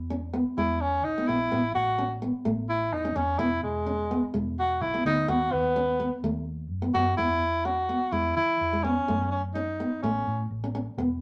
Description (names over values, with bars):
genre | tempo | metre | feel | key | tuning
highlife guitar band | 127 BPM | 4/4 | straight | E major | A4 = 443 Hz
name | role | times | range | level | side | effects
vintage muted fingered electric bass | bass | 0.0-11.2 s | E1 to E3 | -36 LUFS | equal | none
flamenco guitar | accompaniment | 0.1-11.2 s | G#3 to C#4 | -32 LUFS | equal | none
breathy tenor saxophone | melody | 0.6-10.5 s | G#3 to F#4 | -28 LUFS | equal | none
room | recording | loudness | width
moderate club reverb, RT60 0.7 s | none | -27 LUFS | mono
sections
0.0-7.2 A section; 7.2-11.2 B section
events
tenor saxophone solo 0.0-7.2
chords
0.0 E; 1.5 A; 3.4 E; 5.3 B/D#; 7.2 E; 9.1 F#m; 10.0 A